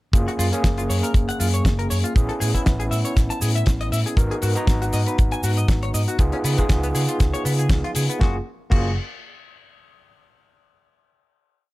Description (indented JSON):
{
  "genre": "nu-disco, nu disco",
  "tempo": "119 BPM",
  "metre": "4/4",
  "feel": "swing 55% on 16ths",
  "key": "F# major",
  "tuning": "A4 = 440 Hz",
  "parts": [
    { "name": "overdriven tine electric piano", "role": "accompaniment", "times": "0.1-8.9 s", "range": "A#3 to A#5", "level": "-26 LUFS", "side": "equal", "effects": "fast tremolo, slapback echo" },
    { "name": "overdriven fingered electric bass", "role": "bass", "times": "0.1-8.9 s", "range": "F#1 to C#3", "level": "-23 LUFS", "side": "equal", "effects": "tube saturation" },
    { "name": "damped 70s drum kit", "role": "drums", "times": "0.1-8.8 s", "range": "cabasa, crash cymbal, hi-hat, snare drum", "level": "-28 LUFS", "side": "left 1 dB", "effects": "none" },
    { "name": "kick drum", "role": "drums", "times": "0.1-8.8 s", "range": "none", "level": "-18 LUFS", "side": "equal", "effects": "none" },
    { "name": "direct-recorded clean electric guitar", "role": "riff", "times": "0.3-8.9 s", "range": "G#3 to A5", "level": "-30 LUFS", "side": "left 2 dB", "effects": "lush chorus" }
  ],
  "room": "small room ambience",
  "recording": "none",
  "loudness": "-18 LUFS",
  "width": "side -19 dB against mid",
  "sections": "0.1-8.2 drop; 8.2-10.2 final chord",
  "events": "drop 0.1-8.2; band accent 7.7",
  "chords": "0.1 F#maj7; 2.2 Amaj7; 4.2 G#m7; 6.2 C#7; 8.2 F#maj7",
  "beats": "| 0.14 0.64 1.15 1.65 | 2.16 2.66 3.17 3.67 | 4.17 4.68 5.18 5.69 | 6.19 6.70 7.20 7.70 | 8.21 8.71"
}